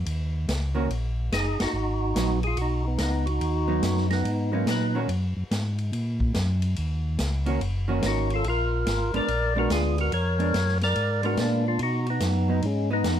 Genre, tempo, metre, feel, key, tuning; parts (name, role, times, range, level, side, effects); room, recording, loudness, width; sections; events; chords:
soul jazz organ trio; 143 BPM; 4/4; swing 65% on 8ths; Eb minor; A4 = 440 Hz
mellow tonewheel organ; bass; 0.0-13.2 s; Gb1 to Cb3; -26 LUFS; equal; overdrive, slow rotary speaker
vintage drum kit; drums; 0.1-13.2 s; hi-hat, kick drum, ride cymbal, snare drum; -33 LUFS; equal
vintage hollow-body jazz guitar; accompaniment; 0.7-13.2 s; Eb3 to Gb4; -29 LUFS; right 3 dB
percussive tonewheel organ; melody; 1.3-5.0, 8.1-13.2 s; Ab3 to D5; -27 LUFS; equal; slow rotary speaker, overdrive
light reverb; close, detailed microphones; -23 LUFS; side -10 dB against mid
0.0-13.2 A section
band accent 1.5
0.0 Ebm7; 1.7 Abm7; 5.1 Ebm7; 8.4 Bb7b9; 11.8 Abm7